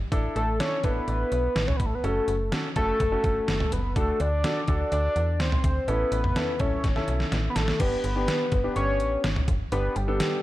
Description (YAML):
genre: synth-pop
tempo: 125 BPM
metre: 4/4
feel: straight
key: unclear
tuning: A4 = 441 Hz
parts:
  - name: slap-like FM bass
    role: bass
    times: 0.0-10.2 s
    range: F#1 to E2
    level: -28 LUFS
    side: equal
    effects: none
  - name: clear baby grand piano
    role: accompaniment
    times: 0.1-10.4 s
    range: B3 to A4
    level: -32 LUFS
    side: left 1 dB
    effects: none
  - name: detuned 8-bit digital drum machine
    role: drums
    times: 0.1-10.3 s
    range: crash cymbal, hi-hat, kick drum, snare drum, toms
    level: -28 LUFS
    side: equal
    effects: none
  - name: fat analog lead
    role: melody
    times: 0.4-10.4 s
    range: G4 to D5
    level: -27 LUFS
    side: equal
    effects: slapback echo
room: digital ambience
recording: none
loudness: -23 LUFS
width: side -16 dB against mid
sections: 0.0-7.8 A section; 7.8-10.4 B section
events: drum fill 6.8-7.8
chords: 0.1 Asus4; 2.0 F#m; 4.0 D7; 5.9 A; 7.8 G